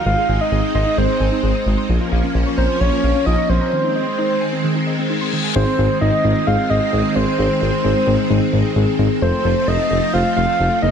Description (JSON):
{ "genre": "synth-pop", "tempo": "131 BPM", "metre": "4/4", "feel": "straight", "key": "unclear", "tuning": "A4 = 442 Hz", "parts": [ { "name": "soft octave-layered synth lead", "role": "melody", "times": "0.0-10.9 s", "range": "C5 to F5", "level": "-20 LUFS", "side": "equal", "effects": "chorus, ping-pong delay" }, { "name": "string machine, violins", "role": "sustained chords", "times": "0.0-10.9 s", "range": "Eb3 to Eb4", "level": "-21 LUFS", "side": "right 1 dB", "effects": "ensemble chorus" }, { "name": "soft round pluck", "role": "arpeggios", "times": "0.1-5.5 s", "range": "Eb3 to Eb6", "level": "-26 LUFS", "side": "left 2 dB", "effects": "chorus, ping-pong delay" }, { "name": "smooth synth bass", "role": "bass", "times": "0.1-10.9 s", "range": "F1 to Bb1", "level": "-19 LUFS", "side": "equal", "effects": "none" }, { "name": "reverse cymbal", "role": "sound effects", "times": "4.8-5.6 s", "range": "none", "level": "-26 LUFS", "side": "left 6 dB", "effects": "none" }, { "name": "muted felt-like synth keys", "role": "accompaniment", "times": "5.6-10.9 s", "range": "Ab3 to C5", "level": "-22 LUFS", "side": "left 2 dB", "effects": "chorus" } ], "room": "light reverb", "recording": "none", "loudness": "-15 LUFS", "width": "side -7 dB against mid", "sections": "0.0-5.6 A section; 5.6-10.9 B section", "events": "break 3.7-5.6; reverse cymbal 4.8-5.6", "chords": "0.1 Ab; 1.9 Bbm; 3.7 Ab; 9.2 F" }